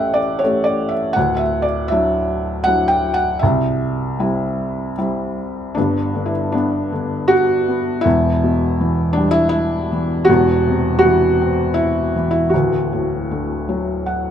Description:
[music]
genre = classical, lyrical solo piano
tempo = 80 BPM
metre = 3/4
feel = rubato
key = C lydian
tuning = A4 = 440 Hz
[part]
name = felt-muted upright piano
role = solo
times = 0.0-14.3 s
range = D1 to G5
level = -15 LUFS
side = equal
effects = none
[sound]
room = moderate recital hall reverb, RT60 1.6 s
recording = none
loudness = -15 LUFS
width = side -9 dB against mid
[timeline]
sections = 0.0-5.8 A section; 5.8-14.3 B section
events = felt piano fill 13.7-14.3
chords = 0.0 A7; 1.2 Dadd9; 3.4 C; 5.8 Gmaj7; 8.1 Em; 10.3 C/E; 12.5 D

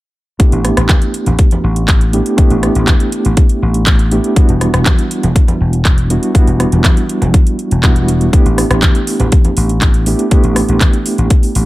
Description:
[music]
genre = nu-disco, nu disco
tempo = 121 BPM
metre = 4/4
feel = straight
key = unclear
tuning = A4 = 440 Hz
[part]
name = mellow reed electric piano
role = accompaniment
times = 0.4-11.7 s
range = G3 to G4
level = -16 LUFS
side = right 1 dB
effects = fast tremolo, sidechain pumping, low-pass filter, dub echo
[part]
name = vintage slap bass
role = bass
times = 0.4-11.7 s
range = E1 to A1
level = -14 LUFS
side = equal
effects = tube saturation
[part]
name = electronic kick drum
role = drums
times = 0.4-11.4 s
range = none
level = -10 LUFS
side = equal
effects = none
[part]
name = house drum kit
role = drums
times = 0.4-11.7 s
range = handclaps, hi-hat, rim click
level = -19 LUFS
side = equal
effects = none
[part]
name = congas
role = percussion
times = 0.9-10.9 s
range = none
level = -21 LUFS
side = right 1 dB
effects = none
[sound]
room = little or no reverb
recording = none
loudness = -9 LUFS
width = side -18 dB against mid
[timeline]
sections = 0.4-11.7 A section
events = filter sweep on reed electric piano 0.4-11.7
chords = 0.4 A7sus4; 4.4 Em9; 8.3 A7sus4

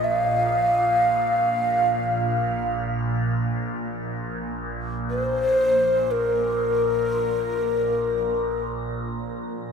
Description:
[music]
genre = world meditative, free-time meditation music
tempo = free time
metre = none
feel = none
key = unclear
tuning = A4 = 440 Hz
[part]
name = breathy mellow Native American-style cedar flute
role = melody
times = 0.0-8.7 s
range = Bb4 to F5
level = -22 LUFS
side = left 1 dB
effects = shimmer reverb, tape echo
[part]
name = overtone-sweeping drone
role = drone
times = 0.0-9.7 s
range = Bb1 to Bb2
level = -28 LUFS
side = right 1 dB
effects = chorus, built-in reverb, phaser
[sound]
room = wet cathedral reverb, RT60 4.2 s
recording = none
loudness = -21 LUFS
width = side -6 dB against mid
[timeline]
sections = 0.0-9.1 A section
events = none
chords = none

